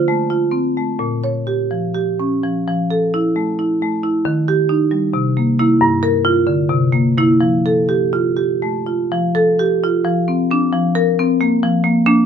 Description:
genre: classical, contemporary piece for solo marimba.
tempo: 239-277 BPM (eighths).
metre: 7/8.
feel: rubato.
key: F major.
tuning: A4 = 437 Hz.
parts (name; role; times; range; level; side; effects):
marimba with medium hard mallets; solo; 0.0-12.3 s; G2 to Db5; -14 LUFS; equal; none.
room: light reverb.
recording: close, detailed microphones.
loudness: -14 LUFS.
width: side -8 dB against mid.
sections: 0.0-9.1 A section; 9.1-12.3 A section.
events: none.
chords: 0.0 Dm7; 1.0 Bbm6; 2.7 Fmaj7; 4.3 Eb; 5.1 C7; 5.8 Gm7; 6.7 C7; 7.4 Fadd9; 10.0 Dm7/F; 10.7 C7sus4/F; 11.6 Bb/F.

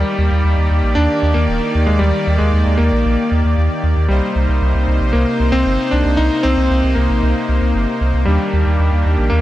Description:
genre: synthwave.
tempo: 115 BPM.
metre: 4/4.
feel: straight.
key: unclear.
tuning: A4 = 440 Hz.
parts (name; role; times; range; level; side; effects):
warm electric grand piano; melody; 0.0-9.4 s; G3 to Eb4; -19 LUFS; left 1 dB; digital delay.
soft supersaw; sustained chords; 0.0-9.4 s; C3 to D5; -20 LUFS; equal; none.
round analog bass; bass; 0.0-9.4 s; Eb1 to Eb2; -15 LUFS; equal; none.
room: light reverb.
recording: none.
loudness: -13 LUFS.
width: side -14 dB against mid.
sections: 0.0-9.4 A section.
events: none.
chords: 0.0 Ebmaj7; 4.1 Cm7; 8.3 Ebmaj7.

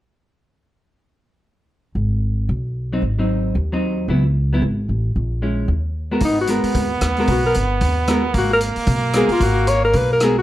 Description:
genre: jazz, small-group swing and bop.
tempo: 226 BPM.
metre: 4/4.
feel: swing 58% on 8ths.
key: G# minor.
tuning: A4 = 440 Hz.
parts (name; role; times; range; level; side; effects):
upright bass; bass; 2.0-10.4 s; G1 to D#2; -20 LUFS; equal; none.
vintage hollow-body jazz guitar; accompaniment; 2.9-10.4 s; F#3 to A#4; -21 LUFS; equal; none.
breathy alto saxophone; melody; 6.2-10.4 s; D#4 to C#5; -18 LUFS; left 2 dB; none.
bright trumpet; second line; 6.2-10.4 s; A#3 to B3; -22 LUFS; right 4 dB; none.
vintage drum kit; drums; 6.2-10.3 s; hi-hat, kick drum, rim click; -25 LUFS; equal; none.
room: moderate studio reverb, RT60 0.8 s.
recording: none.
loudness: -16 LUFS.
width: side -14 dB against mid.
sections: 2.0-6.2 A section; 6.2-10.4 B section.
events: none.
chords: 2.0 G#m; 3.0 G#7; 4.1 C#m7; 5.2 A#m7b5; 5.7 D#m; 6.2 G#m9.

